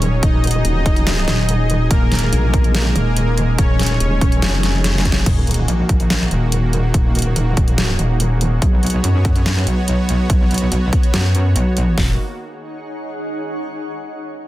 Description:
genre	heavy wobble dubstep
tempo	143 BPM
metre	4/4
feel	half-time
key	Eb minor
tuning	A4 = 441 Hz
part	soft supersaw	melody	0.0-5.2 s	Bb3 to Eb5	-23 LUFS	equal	tape echo
part	supersaw pad	sustained chords	0.0-12.2 s	Eb3 to C#5	-26 LUFS	right 2 dB	sidechain pumping, low-pass filter
part	metallic wobble bass	bass	0.0-12.2 s	Eb1 to F#2	-17 LUFS	equal	distortion, chorus, overdrive
part	dubstep drum kit	drums	0.0-11.9 s	crash cymbal, hi-hat, snare drum	-22 LUFS	equal	overdrive
part	granular cloud pad	texture	0.0-13.6 s	Eb4 to Ab5	-29 LUFS	equal	built-in reverb, sidechain pumping
part	dubstep drum kit	drums	0.2-12.1 s	hi-hat, kick drum, snare drum	-16 LUFS	equal	overdrive
part	vowel-sweep wobble bass	bass	0.6-5.2 s	Eb1 to Bb1	-18 LUFS	equal	chorus, overdrive
part	sub drop	sound effects	5.3-6.9 s	none	-26 LUFS	equal	none
room	digital ambience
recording	dense, heavily limited modern master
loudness	-14 LUFS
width	side -15 dB against mid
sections	0.0-5.3 A section; 5.3-12.0 B section; 12.0-13.7 C section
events	drop 0.0-5.3; drum fill 4.8-5.3; fade-out on ambient pad 5.3-12.0; impact 5.3-6.9; filter sweep on wobble bass 5.3-12.0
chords	0.0 Ebmadd9; 5.3 Ebm; 8.6 Bsus2; 12.0 Ebm

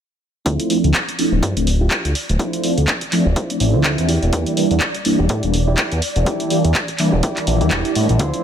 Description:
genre	filtered disco house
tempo	124 BPM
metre	4/4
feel	swing 57% on 16ths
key	D minor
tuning	A4 = 436 Hz
part	mellow synth brass	accompaniment	0.5-8.4 s	E3 to E5	-20 LUFS	right 1 dB	chorus, phaser, sidechain pumping, low-pass filter
part	phased string machine	sustained chords	0.5-8.4 s	D5 to G6	-30 LUFS	right 1 dB	ensemble chorus, phaser, sidechain pumping, low-pass filter
part	clean electric guitar	riff	0.5-8.4 s	E4 to D5	-26 LUFS	right 1 dB	vintage 12-bit sampler grit, sidechain pumping, low-pass filter
part	fat analog bass	bass	0.5-8.3 s	D1 to A2	-17 LUFS	equal	sidechain pumping, low-pass filter
part	electronic kick drum	drums	0.5-8.3 s	none	-25 LUFS	equal	high-pass filter on kick
part	punchy analog drum machine	drums	0.5-8.4 s	handclaps, hi-hat	-23 LUFS	equal	sidechain pumping on hats
room	light reverb, digital ambience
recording	none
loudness	-15 LUFS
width	side -9 dB against mid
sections	0.5-8.4 A section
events	filter sweep 0.5-8.4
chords	0.5 Dm9; 4.1 Em7b5

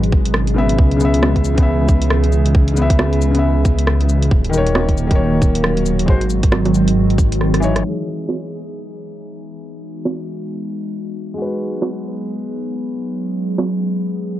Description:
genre	future garage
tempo	136 BPM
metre	4/4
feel	swing 60% on 16ths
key	unclear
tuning	A4 = 440 Hz
part	warbly tape-like pad	sustained chords	0.0-14.4 s	B2 to G#4	-22 LUFS	right 1 dB	chorus, built-in reverb, sidechain pumping
part	dark detuned saw bass	bass	0.0-7.8 s	D#1 to C#2	-17 LUFS	equal	tube saturation, sidechain pumping
part	garage drum kit	drums	0.0-13.7 s	bongos, cabasa, hi-hat, rim click	-21 LUFS	right 2 dB	low-pass filter on hats, vintage 12-bit sampler grit, low-pass filter on snare, low-pass filter on perc, low-pass filter on room
part	electronic kick drum	drums	0.1-7.3 s	none	-14 LUFS	equal	vintage 12-bit sampler grit
part	felt-muted upright piano	accompaniment	0.5-14.4 s	C#3 to E5	-21 LUFS	left 2 dB	vintage 12-bit sampler grit, sidechain pumping, tape echo
room	little or no reverb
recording	dark, warm production, low-pass filter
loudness	-14 LUFS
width	side -13 dB against mid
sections	0.0-7.8 A section; 7.8-14.4 B section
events	drum fill 7.4-7.8; band accent 7.7; filter sweep on drum 7.8-14.4; filter sweep on ambient pad 7.8-14.4; filter sweep 7.8-14.4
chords	0.0 G#m7; 0.8 C#m7; 4.3 Bmaj7/D#; 6.1 G#7; 7.8 Emaj7; 11.4 G#m7

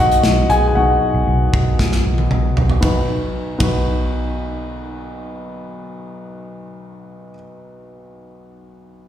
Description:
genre	piano-driven pop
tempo	116 BPM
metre	4/4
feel	straight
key	B major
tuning	A4 = 441 Hz
part	warm upright piano	accompaniment	0.0-9.1 s	B1 to G#5	-20 LUFS	left 1 dB	plate reverb, slapback echo
part	vintage muted fingered electric bass	bass	0.0-7.3 s	B1	-18 LUFS	equal	none
part	modern studio drum kit	drums	0.1-3.7 s	hi-hat, kick drum, ride cymbal, snare drum, toms	-20 LUFS	equal	none
room	light reverb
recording	live gig heard through the venue's PA, recital hall reverb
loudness	-15 LUFS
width	side -10 dB against mid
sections	0.0-2.8 A section; 2.8-7.0 B section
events	upright piano solo 0.0-2.8; drum fill 1.8-2.8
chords	0.0 B

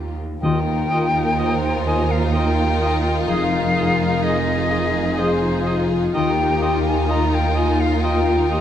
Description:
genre	cinematic, emotional film score for orchestra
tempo	63 BPM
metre	3/4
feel	rubato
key	Eb major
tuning	A4 = 440 Hz
part	warm studio violin section	second line	0.0-8.6 s	F4 to G4	-27 LUFS	left 2 dB	none
part	concert harp	arpeggios	0.0-8.6 s	Eb3 to Eb5	-27 LUFS	left 9 dB	none
part	rich studio cello section	bass	0.0-8.6 s	Eb2 to F2	-26 LUFS	right 2 dB	none
part	warm studio double bass section	bass	0.0-8.6 s	F1 to Eb2	-24 LUFS	right 3 dB	none
part	rich studio violin section	melody	0.4-8.6 s	Ab4 to Bb4	-31 LUFS	left 2 dB	none
part	clear oboe	second line	0.4-8.6 s	Eb5	-31 LUFS	right 1 dB	none
part	mellow clarinet	second line	0.4-8.6 s	F4 to Ab4	-31 LUFS	left 1 dB	none
part	silver concert flute	second line	0.4-8.6 s	C5 to Bb5	-24 LUFS	left 1 dB	none
part	rich studio viola section	accompaniment	0.4-8.6 s	Eb4	-28 LUFS	equal	none
part	timpani	percussion	0.4-1.8 s	Eb3	-26 LUFS	left 1 dB	none
part	warm French horn section	sustained chords	1.4-8.6 s	Eb4 to C5	-25 LUFS	left 3 dB	none
room	moderate scoring stage reverb, RT60 1.6 s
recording	none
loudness	-17 LUFS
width	side -10 dB against mid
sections	0.4-8.6 A section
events	none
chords	0.4 Ebadd9; 3.3 Fm7; 6.1 Ebadd9

